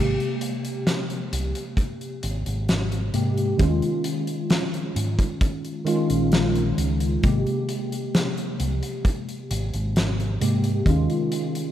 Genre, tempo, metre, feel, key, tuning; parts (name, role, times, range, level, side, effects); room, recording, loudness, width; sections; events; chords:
vaporwave; 66 BPM; 4/4; straight; Ab major; A4 = 440 Hz
mellow tine electric piano; accompaniment; 0.0-11.7 s; C3 to G4; -25 LUFS; equal; medium stereo tremolo, ensemble chorus, analog delay
fingered electric bass; bass; 0.0-11.1 s; Ab1 to Ab2; -25 LUFS; equal
big rock drum kit; drums; 0.2-11.7 s; hi-hat, snare drum; -27 LUFS; left 1 dB
kick drum; drums; 1.8-11.1 s; -22 LUFS; equal
moderate lush hall reverb, RT60 2.6 s; rough home demo mix, cassette tape; -21 LUFS; side -11 dB against mid
0.0-11.7 A section
0.0 Abmaj9; 3.6 Eb9sus4; 7.2 Abmaj9; 10.9 Eb9sus4